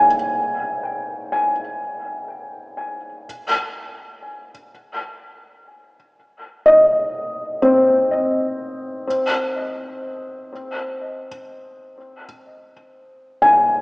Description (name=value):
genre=ambient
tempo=free time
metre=none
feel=none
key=unclear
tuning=A4 = 441 Hz
part: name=felt-muted upright piano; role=solo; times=0.0-13.8 s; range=C4 to Ab5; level=-17 LUFS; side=equal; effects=cassette tape, analog delay
room=wet lush hall reverb, RT60 2.5 s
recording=home recording on cassette, small speaker sound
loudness=-17 LUFS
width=side -25 dB against mid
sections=0.0-3.2 A section; 3.2-13.8 B section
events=none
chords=0.0 N.C.; 3.2 Ab